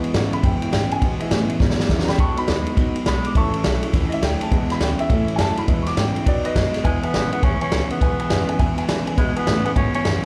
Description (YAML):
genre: rockabilly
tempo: 206 BPM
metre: 4/4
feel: swing 63% on 8ths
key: E major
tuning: A4 = 440 Hz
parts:
  - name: bright upright piano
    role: accompaniment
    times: 0.0-10.2 s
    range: F#3 to D6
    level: -29 LUFS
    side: equal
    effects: slapback echo
  - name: picked steel-string acoustic guitar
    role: accompaniment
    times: 0.0-10.2 s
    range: E2 to F#4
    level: -34 LUFS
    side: equal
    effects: none
  - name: electric guitar through a small old amp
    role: riff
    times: 0.0-10.2 s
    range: E2 to G#3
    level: -28 LUFS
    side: equal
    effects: subtle chorus
  - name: upright bass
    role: bass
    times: 0.0-10.2 s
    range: G#1 to B2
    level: -27 LUFS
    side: equal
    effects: none
  - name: vintage drum kit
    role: drums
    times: 0.0-10.1 s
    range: kick drum, ride cymbal, snare drum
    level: -24 LUFS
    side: equal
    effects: none
  - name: raspy tenor saxophone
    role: melody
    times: 6.9-10.2 s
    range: G#3 to C#4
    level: -28 LUFS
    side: equal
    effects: slapback echo
room: light reverb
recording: live gig heard through the venue's PA, club reverb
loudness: -20 LUFS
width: mono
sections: 0.0-6.8 A section; 6.8-10.2 B section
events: upright piano solo 0.0-6.8; drum fill 1.6-2.2; upright piano fill 8.3-9.2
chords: 0.0 E; 2.2 B; 3.4 A; 4.5 E; 5.1 A; 5.7 E; 6.3 B; 6.8 E